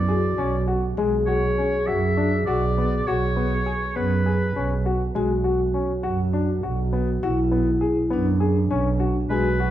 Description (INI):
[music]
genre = contemporary instrumental, contemporary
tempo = 202 BPM (eighths)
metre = 7/8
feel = straight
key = B dorian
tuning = A4 = 441 Hz
[part]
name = clear oboe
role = melody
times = 0.0-4.9, 9.3-9.7 s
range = B4 to E5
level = -28 LUFS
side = equal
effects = none
[part]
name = vibraphone with soft mallets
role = second line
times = 0.0-9.7 s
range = D4 to G#4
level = -26 LUFS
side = left 2 dB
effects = none
[part]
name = dark double bass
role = bass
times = 0.0-9.7 s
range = B1 to F#2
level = -24 LUFS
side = right 3 dB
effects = none
[part]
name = warm grand piano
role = arpeggios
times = 0.1-9.7 s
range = G#3 to G#4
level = -26 LUFS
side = left 3 dB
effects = none
[sound]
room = moderate recital hall reverb, RT60 1.6 s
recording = dark, warm production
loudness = -20 LUFS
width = side -12 dB against mid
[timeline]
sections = 0.0-9.7 A section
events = none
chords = 0.0 Bm6